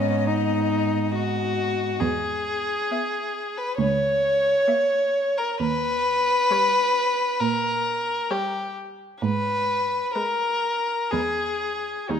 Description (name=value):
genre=classical, slow romantic movement for string quartet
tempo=61-69 BPM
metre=4/4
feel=rubato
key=G# minor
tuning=A4 = 440 Hz
part: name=muted violin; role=melody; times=0.0-12.2 s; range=B4 to E5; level=-33 LUFS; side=left 10 dB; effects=none
part: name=muted violin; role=second line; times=0.0-12.2 s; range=C#4 to C#5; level=-22 LUFS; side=left 2 dB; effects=none
part: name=muted viola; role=accompaniment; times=0.0-12.2 s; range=G3 to B3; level=-34 LUFS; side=right 4 dB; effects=none
part: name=muted cello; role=bass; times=0.0-12.2 s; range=C#2 to A#2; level=-27 LUFS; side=right 5 dB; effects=none
room=moderate recital hall reverb, RT60 1.6 s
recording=minimal, uncompressed stereo recording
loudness=-21 LUFS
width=side -8 dB against mid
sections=0.0-12.2 A section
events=none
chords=0.0 G#m; 2.0 E; 3.8 A#dim/C#; 5.6 D#7; 9.2 G#m; 11.1 E